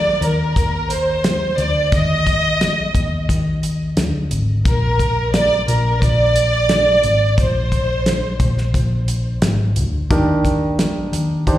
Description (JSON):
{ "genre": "piano-driven pop", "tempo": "88 BPM", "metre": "4/4", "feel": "straight", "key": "Eb major", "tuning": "A4 = 444 Hz", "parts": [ { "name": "warm studio violin section", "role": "melody", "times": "0.0-8.7 s", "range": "Bb4 to Eb5", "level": "-18 LUFS", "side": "right 1 dB", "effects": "plate reverb, slapback echo, tape echo" }, { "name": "hollow-body short-scale picked electric bass", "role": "bass", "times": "0.0-11.6 s", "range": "Ab1 to Eb2", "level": "-19 LUFS", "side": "left 1 dB", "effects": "none" }, { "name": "damped 70s drum kit", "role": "drums", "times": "0.2-11.6 s", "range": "hi-hat, kick drum, snare drum", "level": "-19 LUFS", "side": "equal", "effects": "slapback echo" }, { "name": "warm grand piano", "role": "accompaniment", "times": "10.1-11.6 s", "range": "Eb3 to C5", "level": "-18 LUFS", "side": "right 1 dB", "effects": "plate reverb, slapback echo" } ], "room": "light reverb", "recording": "live gig heard through the venue's PA, recital hall reverb", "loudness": "-15 LUFS", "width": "side -13 dB against mid", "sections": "0.0-11.6 A section", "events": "none", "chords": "0.0 Eb5; 4.7 Bbadd9; 10.1 Ebmaj7" }